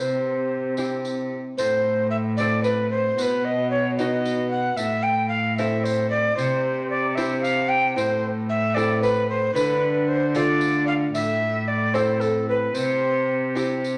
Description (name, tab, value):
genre	classical, renaissance-style consort dance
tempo	75 BPM (dotted quarters)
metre	6/8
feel	straight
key	unclear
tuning	A4 = 440 Hz
part	alto recorder	melody	0.0-13.6 s	A4 to G5	-25 LUFS	equal	none
part	lute	accompaniment	0.0-14.0 s	A2 to A4	-31 LUFS	equal	none
part	rich cello	bass	0.0-14.0 s	A2 to D3	-28 LUFS	equal	none
part	tambourine	percussion	0.8-14.0 s	none	-42 LUFS	equal	none
room	wet stone room reverb, RT60 1.2 s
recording	none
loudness	-23 LUFS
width	mono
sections	0.0-1.6 A section; 1.6-14.0 A section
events	none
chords	0.0 C; 1.6 Am; 3.2 B; 4.8 Am; 6.4 C; 8.0 Am; 9.6 Dm; 11.2 Am; 12.8 C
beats	0.77 | 1.58 2.38 | 3.18 3.99 | 4.78 5.58 | 6.38 7.17 | 7.97 8.77 | 9.56 10.35 | 11.15 11.95 | 12.76 13.57